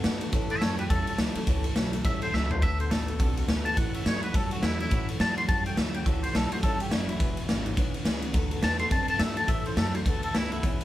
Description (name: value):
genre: rockabilly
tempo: 210 BPM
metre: 4/4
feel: swing 60% on 8ths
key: A mixolydian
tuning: A4 = 440 Hz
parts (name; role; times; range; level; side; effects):
- picked steel-string acoustic guitar; accompaniment; 0.0-10.8 s; A2 to A4; -38 LUFS; left 3 dB; none
- electric guitar through a small old amp; riff; 0.0-10.8 s; E2 to C4; -36 LUFS; right 4 dB; none
- upright bass; bass; 0.0-10.8 s; E1 to A2; -33 LUFS; equal; none
- raw garage drum kit; drums; 0.0-10.8 s; kick drum, ride cymbal, snare drum, toms; -27 LUFS; equal; none
- twangy electric guitar; melody; 0.5-10.8 s; E4 to C6; -31 LUFS; left 1 dB; tremolo
room: light reverb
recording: band playing live in one room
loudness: -24 LUFS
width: side -14 dB against mid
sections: 0.0-10.8 A section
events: drum fill 2.3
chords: 0.3 A6; 2.6 D6; 3.8 A6; 7.2 E6; 8.3 D6; 9.5 A6; 10.1 D6